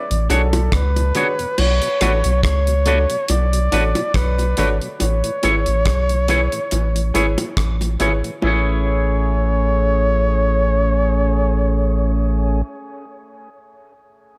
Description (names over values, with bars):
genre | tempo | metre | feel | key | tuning
lovers rock reggae | 70 BPM | 4/4 | swing 56% on 16ths | A major | A4 = 443 Hz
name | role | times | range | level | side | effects
warm flugelhorn | melody | 0.0-12.6 s | A4 to D5 | -24 LUFS | equal | tape echo
tonewheel organ | accompaniment | 0.1-12.6 s | E2 to G#4 | -30 LUFS | equal | slow rotary speaker, dub echo
soft dub sub bass | bass | 0.1-12.6 s | G#1 to C#2 | -20 LUFS | equal | none
damped 70s drum kit | drums | 0.1-8.4 s | crash cymbal, hi-hat, kick drum, rim click | -26 LUFS | equal | gated reverb, dub echo
warm concert grand piano | accompaniment | 0.3-12.7 s | D4 to C#5 | -30 LUFS | equal | dub echo
twangy electric guitar | stabs | 0.3-12.8 s | A3 to C#5 | -26 LUFS | equal | none
bongos | percussion | 0.3-8.8 s | none | -30 LUFS | equal | none
room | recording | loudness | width
light reverb | none | -18 LUFS | mono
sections
0.0-1.6 A section; 1.6-8.4 B section; 8.4-11.9 C section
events
none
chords
0.0 E13; 1.6 Bm7; 5.0 Amaj7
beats
0.72 | 1.58 2.43 3.29 4.15 | 5.00 5.86 6.71 7.57 | 8.43 9.29 10.14 11.00